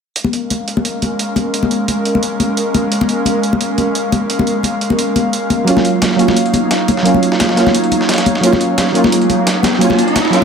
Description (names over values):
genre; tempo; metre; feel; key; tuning
liquid drum and bass; 174 BPM; 4/4; swing 53% on 16ths; unclear; A4 = 439 Hz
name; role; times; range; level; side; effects
airy breathy pad; sustained chords; 0.4-10.4 s; Gb3 to F5; -17 LUFS; right 1 dB; chorus
electronic hi-hat; drums; 0.2-10.4 s; none; -23 LUFS; right 5 dB; studio reverb
congas; percussion; 0.2-10.4 s; none; -18 LUFS; left 4 dB; none
deep mellow chord stab; accompaniment; 5.6-10.4 s; Gb3 to F4; -13 LUFS; right 2 dB; chorus, ping-pong delay
dusty soul sampler-style drum kit; drums; 5.7-10.4 s; hi-hat, snare drum; -19 LUFS; right 1 dB; high-pass filter on hats, studio reverb, high-pass filter on snare
riser; sound effects; 9.1-10.4 s; none; -20 LUFS; equal; none
room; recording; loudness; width
moderate digital room reverb, RT60 0.9 s, digital ambience; none; -12 LUFS; side -6 dB against mid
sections
0.2-10.4 A section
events
riser 9.1-10.4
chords
0.2 Bbm7; 5.7 Ebm9